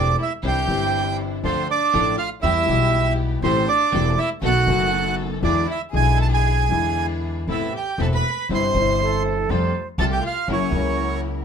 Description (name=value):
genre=tango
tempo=120 BPM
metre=4/4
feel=rubato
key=A minor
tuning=A4 = 440 Hz
part: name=bandoneon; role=melody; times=0.0-11.2 s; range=C5 to C6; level=-22 LUFS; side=right 6 dB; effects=none
part: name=warm violin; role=second line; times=0.0-11.2 s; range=C4 to C5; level=-28 LUFS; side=left 4 dB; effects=none
part: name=dark concert grand piano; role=accompaniment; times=0.0-11.4 s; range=E1 to A4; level=-25 LUFS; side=left 5 dB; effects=none
part: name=rich studio string section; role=stabs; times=0.0-11.4 s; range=B3 to C5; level=-32 LUFS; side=right 1 dB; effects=none
part: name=upright bass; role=bass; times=0.0-11.4 s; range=E1 to F2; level=-24 LUFS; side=equal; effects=none
part: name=concert flute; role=second line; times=9.0-9.9 s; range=A4 to C5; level=-25 LUFS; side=right 6 dB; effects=none
room=moderate club reverb, RT60 0.5 s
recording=minimal, uncompressed stereo recording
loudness=-18 LUFS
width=side -7 dB against mid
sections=0.0-11.4 A section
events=none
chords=0.4 Cadd9; 1.4 Dm; 2.4 Em; 3.4 Am7; 4.4 B7; 5.4 E7; 7.5 Amadd9; 8.5 Cmaj7/G; 9.5 Fadd9; 10.5 F#7